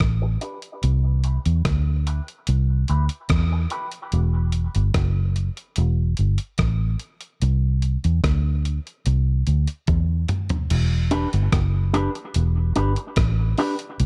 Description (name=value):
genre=dub reggae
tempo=73 BPM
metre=4/4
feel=straight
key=E minor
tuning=A4 = 440 Hz
part: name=vintage muted fingered electric bass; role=bass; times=0.0-14.1 s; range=E1 to E2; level=-22 LUFS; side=equal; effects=none
part: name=dusty soul sampler-style drum kit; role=drums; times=0.0-14.1 s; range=crash cymbal, hi-hat, kick drum, rim click, toms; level=-27 LUFS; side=equal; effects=none
part: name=electric guitar with an envelope filter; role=accompaniment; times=0.2-3.9, 11.1-13.7 s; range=D4 to B4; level=-30 LUFS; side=equal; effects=high-pass filter, low-pass filter, tape echo
room=little or no reverb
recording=dark, warm production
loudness=-22 LUFS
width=mono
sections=0.0-10.7 A section; 10.7-14.1 B section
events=filter sweep on clean electric guitar 0.0-4.1; drum fill 9.9-10.7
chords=0.0 Em7 (rootless); 0.8 Cmaj7; 4.1 Em; 7.4 C; 10.7 Em7